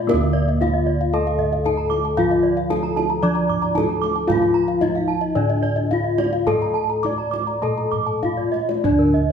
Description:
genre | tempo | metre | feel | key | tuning
Balinese gamelan | 97-114 BPM | 4/4 | straight | D pelog | A4 = 438 Hz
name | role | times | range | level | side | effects
gamelan-type bronze metallophone | melody | 0.0-9.3 s | Bb3 to D5 | -23 LUFS | left 4 dB | none
gamelan-type bronze metallophone | accompaniment | 0.0-8.8 s | D3 to D4 | -28 LUFS | right 3 dB | none
gamelan-type bronze metallophone | arpeggios | 0.0-9.0 s | Bb4 to D6 | -27 LUFS | left 6 dB | none
gamelan-type bossed gongs | bass | 0.0-9.3 s | D2 to Bb4 | -22 LUFS | right 1 dB | none
kendang | percussion | 0.1-9.3 s | none | -29 LUFS | right 4 dB | none
gamelan-type bronze metallophone | arpeggios | 0.3-9.3 s | Bb4 to D6 | -27 LUFS | right 8 dB | none
room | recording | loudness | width
moderate recital hall reverb, RT60 1.5 s | minimal, uncompressed stereo recording | -18 LUFS | side -7 dB against mid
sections
0.0-8.8 A section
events
drum fill 8.2-8.8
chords
none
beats
| 0.09 0.61 1.13 1.66 | 2.18 2.71 3.23 3.75 | 4.28 4.81 5.35 5.90 | 6.46 7.03 7.62 8.22 | 8.83

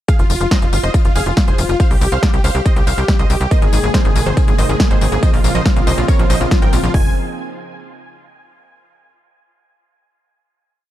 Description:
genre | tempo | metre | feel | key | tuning
uplifting trance | 140 BPM | 4/4 | straight | F minor | A4 = 440 Hz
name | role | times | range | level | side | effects
dense compressed supersaw | melody | 0.1-7.1 s | F4 to Ab5 | -22 LUFS | right 1 dB | vintage 12-bit sampler grit, sidechain pumping, dub echo
analog pluck | second line | 0.1-7.1 s | F4 to Ab5 | -26 LUFS | left 3 dB | chorus, sidechain pumping, dub echo
big-room dance drum kit | drums | 0.1-7.0 s | hi-hat, kick drum | -14 LUFS | equal | overdrive
big-room dance drum kit | drums | 0.1-6.9 s | hi-hat, snare drum, tambourine | -23 LUFS | left 1 dB | overdrive
tight sequencer bass | bass | 0.2-7.1 s | F1 to Db2 | -18 LUFS | equal | sidechain pumping
analog string pad | sustained chords | 3.5-7.1 s | C3 to Ab4 | -24 LUFS | right 2 dB | ensemble chorus, sidechain pumping
analog pluck | arpeggios | 3.5-7.1 s | Eb3 to C4 | -25 LUFS | equal | chorus, phaser, sidechain pumping, dub echo
room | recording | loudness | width
little or no reverb | dark, warm production | -12 LUFS | side -13 dB against mid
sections
0.1-6.9 drop; 6.9-8.7 final chord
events
drop 0.1-6.9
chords
0.1 Fm; 1.8 C5; 3.5 Abadd9; 5.2 Bbmadd9; 6.9 Fm7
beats
| 0.09 0.51 0.94 1.37 | 1.80 2.23 2.66 3.08 | 3.51 3.94 4.37 4.80 | 5.23 5.66 6.08 6.51 | 6.94

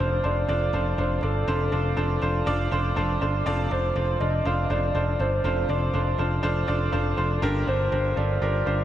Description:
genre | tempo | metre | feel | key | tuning
piano-driven pop | 121 BPM | 4/4 | straight | F major | A4 = 440 Hz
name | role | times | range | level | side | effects
hollow clarinet-like synth lead | melody | 0.0-8.8 s | A4 to F5 | -30 LUFS | equal | chorus, diffuse ambient delay
bright grand piano | accompaniment | 0.0-8.8 s | G2 to D5 | -26 LUFS | right 1 dB | none
modern bright picked electric bass | bass | 0.0-8.8 s | F1 to G1 | -26 LUFS | equal | none
room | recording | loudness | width
wet huge ambient reverb, RT60 7.2 s | dreamy mix soaked in reverb | -22 LUFS | side -12 dB against mid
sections
0.0-8.8 A section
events
none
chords
0.0 F6; 7.4 Gm7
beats
0.49 0.98 | 1.48 1.98 2.47 2.97 | 3.46 3.96 4.45 4.95 | 5.44 5.94 6.44 6.93 | 7.43 7.92 8.42

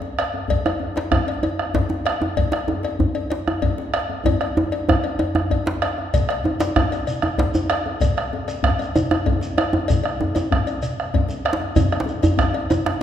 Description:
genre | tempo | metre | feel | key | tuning
west african traditional, West African drum ensemble | 128 BPM (dotted quarters) | 12/8 | straight | none | none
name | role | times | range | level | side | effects
djembe | percussion | 0.0-13.0 s | none | -27 LUFS | left 5 dB | none
bombo | percussion | 0.2-13.0 s | none | -23 LUFS | right 2 dB | none
cowbell | percussion | 0.2-12.8 s | none | -28 LUFS | left 7 dB | none
djembe | percussion | 0.7-13.0 s | none | -22 LUFS | right 1 dB | none
shekere | percussion | 6.1-12.8 s | none | -32 LUFS | right 2 dB | none
room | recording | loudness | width
wet recital hall reverb, RT60 1.8 s | minimal, uncompressed stereo recording | -19 LUFS | side -10 dB against mid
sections
0.0-6.1 A section; 6.1-13.0 B section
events
drum fill 4.3-6.1, 12.9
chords
none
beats
0.03 | 0.50 0.97 1.44 1.91 | 2.38 2.85 3.32 3.79 | 4.26 4.73 5.20 5.67 | 6.14 6.61 7.08 7.55 | 8.02 8.49 8.96 9.43 | 9.89 10.36 10.83 11.30 | 11.77 12.24 12.70

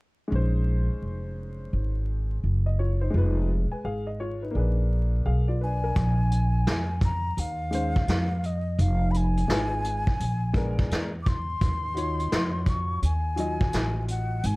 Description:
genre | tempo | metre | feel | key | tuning
hip hop, jazz-hop | 85 BPM | 4/4 | swing 64% on 16ths | Bb minor | A4 = 441 Hz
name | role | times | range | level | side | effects
warm upright piano | accompaniment | 0.3-14.4 s | Gb3 to Ab5 | -33 LUFS | left 2 dB | none
upright bass | bass | 0.3-14.6 s | F1 to F2 | -25 LUFS | equal | none
breathy jazz flute | melody | 5.6-14.6 s | Eb5 to D6 | -32 LUFS | left 1 dB | slapback echo
vintage brush drum kit | drums | 6.0-14.6 s | hi-hat, kick drum, snare drum | -27 LUFS | equal | none
room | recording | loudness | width
little or no reverb | dark, warm production, vinyl crackle | -24 LUFS | side -24 dB against mid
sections
0.3-6.0 A section; 6.0-14.6 B section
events
none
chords
0.3 Bbm11; 3.1 Fm7b5; 4.6 Bb7b9; 6.0 Bb7sus4; 8.8 Fm7b5; 10.2 Bb7b9; 11.6 Ebm9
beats
| 0.32 1.02 1.73 2.43 | 3.14 3.85 4.55 5.26 | 5.96 6.67 7.38 8.08 | 8.79 9.49 10.20 10.90 | 11.61 12.32 13.02 13.73 | 14.43

